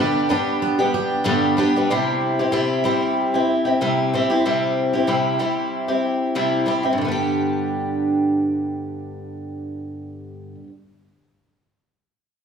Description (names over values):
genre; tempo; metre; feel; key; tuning
pop; 94 BPM; 4/4; swing 55% on 16ths; G major; A4 = 441 Hz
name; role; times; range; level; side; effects
picked twelve-string acoustic guitar; accompaniment; 0.0-10.7 s; G2 to G4; -19 LUFS; equal; none
picked steel-string acoustic guitar; arpeggios; 0.0-2.5 s; B3 to G4; -26 LUFS; right 1 dB; none
room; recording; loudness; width
wet large studio reverb, RT60 1.4 s; band playing live in one room; -18 LUFS; side -7 dB against mid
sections
0.0-7.0 A section; 7.0-9.5 B section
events
none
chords
0.0 G; 1.9 C; 7.0 G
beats
0.62 1.25 | 1.89 2.52 3.16 3.80 | 4.44 5.07 5.71 6.34 | 6.98 7.62 8.25 8.89